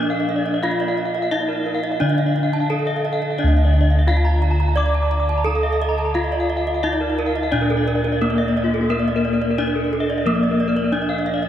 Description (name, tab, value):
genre	gamelan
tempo	87 BPM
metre	4/4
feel	straight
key	D pelog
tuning	A4 = 439 Hz
part	gamelan-type bronze metallophone	melody	0.0-11.5 s	Bb3 to D5	-22 LUFS	equal	none
part	gamelan-type bronze metallophone	arpeggios	0.0-11.4 s	F4 to D6	-25 LUFS	left 3 dB	none
part	gamelan-type bronze metallophone	arpeggios	0.0-11.5 s	A4 to Bb5	-26 LUFS	right 4 dB	none
part	gamelan-type bossed gongs	bass	0.0-11.5 s	D2 to Bb4	-21 LUFS	equal	none
room	wet huge ambient reverb, RT60 7.6 s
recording	in a vast, echoing space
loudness	-17 LUFS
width	side -10 dB against mid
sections	0.0-11.5 A section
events	none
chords	none